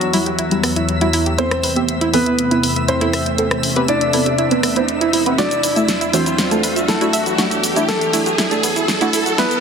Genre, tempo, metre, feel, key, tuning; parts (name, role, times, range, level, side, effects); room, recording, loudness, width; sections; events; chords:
progressive house; 120 BPM; 4/4; straight; A4 = 440 Hz
warm grand piano; melody; 0.0-9.6 s; F#3 to D5; -21 LUFS; left 2 dB; tape echo
lush unison pad; sustained chords; 0.0-9.6 s; E2 to D4; -24 LUFS; left 1 dB; chorus
analog pluck; arpeggios; 0.0-9.4 s; E3 to E5; -23 LUFS; right 4 dB; chorus, tape echo
pop drum kit; drums; 0.0-9.6 s; hi-hat, rim click, shaker, snare drum; -20 LUFS; left 1 dB; soft clipping on snare
riser; sound effects; 0.8-9.6 s; -25 LUFS; right 2 dB
twinkling granular texture; texture; 0.0-9.6 s; E5 to E6; -29 LUFS; equal; built-in reverb
deep mellow chord stab; stabs; 0.1-9.5 s; G3 to C5; -22 LUFS; right 2 dB; chorus, tape echo
moderate huge ambient reverb, RT60 4.5 s; dense, heavily limited modern master, high-pass filter; -14 LUFS; side -6 dB against mid
0.0-9.6 A section
build-up 0.0-9.6; filter sweep on synth arpeggio sound 0.0-9.6; filter sweep on synth stab 0.0-9.6; riser 0.8-9.6; drum fill 5.4-9.6
0.0 Emadd9; 1.4 Amadd9/E; 5.4 D/E